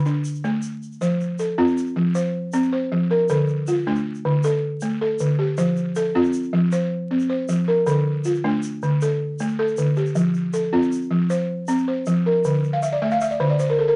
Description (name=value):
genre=west african traditional, West African string and xylophone music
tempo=105 BPM (dotted quarters)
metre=12/8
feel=straight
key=F major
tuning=A4 = 440 Hz
part: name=balafon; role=arpeggios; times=0.0-14.0 s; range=D3 to F5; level=-22 LUFS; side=equal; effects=none
part: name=tube shaker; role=percussion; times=0.1-13.7 s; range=none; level=-45 LUFS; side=equal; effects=none
room=moderate studio reverb, RT60 0.6 s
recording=vinyl crackle, nothing above 10.8 kHz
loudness=-22 LUFS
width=mono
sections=0.0-1.0 A section; 1.0-14.0 B section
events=balafon fill 12.7-14.0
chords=0.0 D5; 1.0 F; 3.3 Dm; 5.6 F; 7.9 Dm; 10.2 F; 12.4 D5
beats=0.44 | 1.01 1.58 2.15 2.72 | 3.29 3.87 4.44 5.01 | 5.58 6.15 6.72 7.30 | 7.87 8.44 9.01 9.58 | 10.16 10.73 11.30 11.87 | 12.44 13.02 13.59